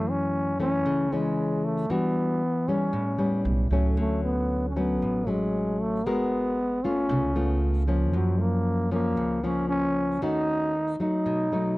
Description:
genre	bossa nova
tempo	115 BPM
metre	4/4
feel	straight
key	unclear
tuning	A4 = 442 Hz
part	growling trombone	melody	0.0-11.8 s	F#3 to D#4	-27 LUFS	equal	none
part	nylon-string guitar	accompaniment	0.0-11.8 s	F#2 to A#4	-27 LUFS	left 2 dB	none
part	upright bass	bass	0.0-11.8 s	G#1 to F#2	-28 LUFS	right 1 dB	none
room	little or no reverb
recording	dry, close 1970s-style studio recording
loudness	-23 LUFS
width	side -19 dB against mid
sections	0.0-11.8 A section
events	none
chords	0.0 F#m7; 1.9 Em9; 2.9 A9; 4.0 Dmaj7; 6.1 G#m9; 7.1 C#aug7; 8.1 F#maj7; 10.2 D#m7b5; 11.3 B7

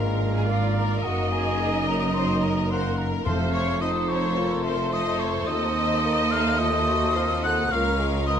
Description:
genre	classical, dramatic, fast romantic movement for symphony orchestra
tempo	108 BPM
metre	4/4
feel	straight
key	unclear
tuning	A4 = 440 Hz
part	warm symphonic violin section	melody	0.0-8.4 s	A4 to Bb4	-35 LUFS	left 3 dB	none
part	dark clarinet	second line	0.0-8.4 s	Eb4 to Gb4	-33 LUFS	left 1 dB	none
part	hollow concert flute	second line	0.0-8.4 s	F5 to Gb6	-28 LUFS	left 2 dB	none
part	mellow cor anglais	second line	0.0-8.4 s	C5 to Gb5	-35 LUFS	right 3 dB	none
part	warm symphonic violin section	second line	0.0-8.3 s	F4 to Gb5	-32 LUFS	left 3 dB	none
part	warm bassoon	accompaniment	0.0-8.4 s	Gb3 to C4	-33 LUFS	right 2 dB	none
part	warm symphonic viola section	accompaniment	0.0-8.4 s	Ab4 to Eb5	-31 LUFS	right 2 dB	none
part	mellow French horn section	sustained chords	0.0-7.9 s	A3 to F4	-33 LUFS	left 6 dB	none
part	rich symphonic cello section	bass	0.0-8.4 s	Db2 to Ab2	-28 LUFS	right 2 dB	none
part	rich symphonic double bass section	bass	0.0-8.4 s	F1 to Eb2	-30 LUFS	right 2 dB	none
part	timpani	percussion	3.3-4.1 s	F2	-30 LUFS	left 1 dB	none
room	light reverb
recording	close, detailed microphones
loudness	-21 LUFS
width	side -8 dB against mid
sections	0.0-8.4 A section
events	none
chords	0.0 Bb7/Ab; 1.0 Ebm/Gb; 3.3 F; 5.5 F7/Eb; 7.7 Bbm/Db

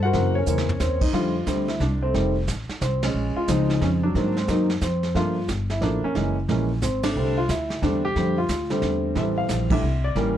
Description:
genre	jazz piano trio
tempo	180 BPM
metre	3/4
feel	swing 64% on 8ths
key	F major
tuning	A4 = 438 Hz
part	warm concert grand piano	melody	0.0-10.4 s	Db3 to Gb5	-23 LUFS	equal	none
part	upright bass	bass	0.0-10.4 s	F1 to Ab2	-25 LUFS	equal	none
part	vintage brush drum kit	drums	0.1-10.4 s	brushed snare drum, crash cymbal, hi-hat, kick drum, ride cymbal, snare drum, toms	-30 LUFS	right 1 dB	none
room	light reverb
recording	dark, warm production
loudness	-21 LUFS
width	side -10 dB against mid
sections	0.0-1.1 A section; 1.1-9.2 B section; 9.2-10.4 C section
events	drum fill 0.5-0.8; band accent 3.0, 7.0, 9.7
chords	0.1 Gb7#11; 1.1 F6; 2.1 F; 3.1 Bbm7; 4.2 Ab9; 5.2 Gm9; 6.2 Gb9; 7.2 F6; 9.2 Fmaj9

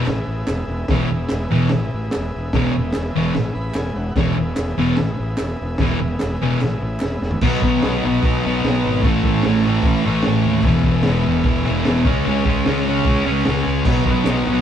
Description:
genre	garage rock duo or trio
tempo	148 BPM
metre	4/4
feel	straight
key	E major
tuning	A4 = 440 Hz
part	combo organ	sustained chords	0.0-14.6 s	F#4 to C#6	-31 LUFS	right 1 dB	none
part	fuzz guitar	riff	0.0-14.6 s	E2 to C#4	-18 LUFS	equal	distortion
part	fuzz fingered electric bass	bass	0.1-14.6 s	E1 to D#2	-24 LUFS	equal	overdrive, tube saturation
part	crunchy breakbeat drum kit	drums	0.1-14.3 s	crash cymbal, hi-hat, kick drum, snare drum, toms	-23 LUFS	equal	none
part	group handclap	percussion	0.1-7.1, 14.3-14.4 s	none	-39 LUFS	right 2 dB	none
room	moderate stone room reverb, RT60 1.2 s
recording	band playing live in one room, cassette tape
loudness	-16 LUFS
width	side -9 dB against mid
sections	0.0-7.4 A section; 7.4-14.6 B section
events	transistor combo organ fill 3.4-4.2, 9.4-10.6, 13.1-13.9; drum fill 7.2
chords	0.0 E; 7.4 B; 9.0 A; 10.6 E; 12.1 C#m; 13.9 B

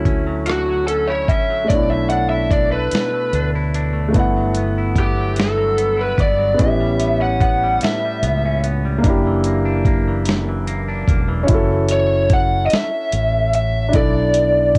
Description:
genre	slow six-eight R&B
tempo	49 BPM (dotted quarters)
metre	6/8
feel	straight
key	unclear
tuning	A4 = 439 Hz
part	clean electric guitar	second line	0.0-12.1 s	F#2 to E4	-29 LUFS	equal	spring reverb, cassette tape
part	warm concert grand piano	accompaniment	0.0-14.8 s	A3 to F#5	-25 LUFS	equal	cassette tape
part	fretless electric bass	bass	0.0-14.8 s	E1 to D2	-24 LUFS	equal	none
part	dusty soul sampler-style drum kit	drums	0.1-14.8 s	hi-hat, kick drum, rim click, snare drum	-21 LUFS	equal	none
part	lead guitar through a small cranked amp	melody	0.5-14.8 s	F#4 to F#5	-21 LUFS	equal	overdrive, cassette tape
room	light reverb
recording	home recording on cassette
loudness	-18 LUFS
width	mono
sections	0.0-11.5 A section; 11.5-14.8 B section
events	lead electric guitar solo 0.0-11.5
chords	0.0 Dmaj9; 1.7 Bm11; 4.1 Gmaj13; 6.6 A9; 9.0 F#7b9b13; 11.5 F#m7; 13.9 Bm7

